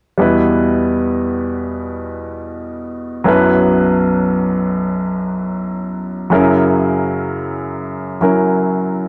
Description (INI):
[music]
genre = pop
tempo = free time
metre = none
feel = none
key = E minor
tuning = A4 = 440 Hz
[part]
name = clear baby grand piano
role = accompaniment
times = 0.2-9.1 s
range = B1 to B4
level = -17 LUFS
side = equal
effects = none
[sound]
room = moderate echo chamber reverb, RT60 1.7 s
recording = dark, warm production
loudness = -16 LUFS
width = mono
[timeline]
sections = 0.2-9.1 A section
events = none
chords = 0.2 Em; 3.3 Bsus4; 6.3 F#7